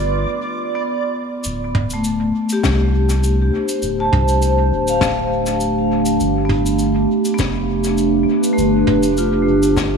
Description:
ambient dub; 101 BPM; 4/4; straight; D dorian; A4 = 440 Hz
warbly tape-like pad; sustained chords; 0.0-10.0 s; F3 to C5; -18 LUFS; right 1 dB; chorus, built-in reverb
vibraphone with medium hard mallets; arpeggios; 0.0-10.0 s; A3 to A5; -21 LUFS; left 1 dB; vintage 12-bit sampler grit, tape echo
soft dub sub bass; bass; 0.0-10.0 s; D1 to C2; -20 LUFS; equal
vintage brush drum kit; drums; 1.4-9.9 s; cabasa, snare drum, toms; -24 LUFS; left 1 dB; dub echo
electronic kick drum; drums; 2.6-9.9 s; -26 LUFS; equal
moderate echo chamber reverb, RT60 2.2 s; small room ambience; -15 LUFS; side -5 dB against mid
0.0-1.4 A section; 1.4-10.0 A section
break 0.3-1.4
0.0 G7; 1.4 Dm7; 6.2 G7

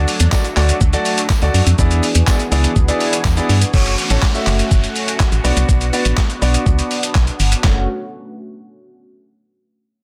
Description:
dance-pop; 123 BPM; 4/4; straight; F# minor; A4 = 440 Hz
clear concert grand piano; accompaniment; 0.0-7.9 s; A3 to E5; -23 LUFS; equal; sidechain pumping, low-pass filter
sweeping resonant pad; sustained chords; 0.0-7.9 s; E3 to G#4; -28 LUFS; equal; chorus, sidechain pumping, low-pass filter
organ-like FM bass; bass; 0.0-7.9 s; F#1 to G2; -18 LUFS; equal; sidechain pumping
dusty soul sampler-style drum kit; drums; 0.1-7.8 s; crash cymbal, handclaps, hi-hat, kick drum, shaker, snare drum; -19 LUFS; equal
tambourine; percussion; 0.3-3.4 s; -35 LUFS; equal
downlifter; sound effects; 3.7-7.6 s; -31 LUFS; equal
digital ambience; dense, heavily limited modern master; -16 LUFS; mono
0.0-3.7 A section; 3.7-7.6 B section; 7.6-9.6 C section
drop 0.0-3.7
0.0 D; 1.8 E7; 3.7 F#m; 5.4 Bm; 7.6 F#m

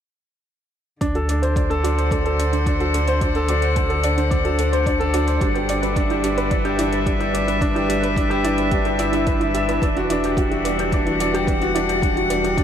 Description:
piano and strings electronica; 109 BPM; 4/4; straight; A4 = 440 Hz
warm string quartet; sustained chords; 1.0-12.6 s; D3 to F#5; -24 LUFS; left 2 dB
soft round pluck; arpeggios; 1.0-12.6 s; D4 to D5; -27 LUFS; right 3 dB; chorus, cassette tape, sidechain pumping, analog delay
clear upright piano; riff; 1.0-12.6 s; D4 to E5; -22 LUFS; equal; analog delay
warm sub bass; bass; 1.0-12.6 s; E1 to D2; -25 LUFS; equal; sidechain pumping
electronic hi-hat; drums; 1.0-12.6 s; -35 LUFS; right 1 dB; overdrive
electronic kick drum; drums; 1.0-12.6 s; -23 LUFS; equal; overdrive
moderate huge ambient reverb, RT60 8.4 s; dreamy mix soaked in reverb; -18 LUFS; side -9 dB against mid
1.0-12.6 A section
1.0 D7; 5.4 G6; 9.8 Em9

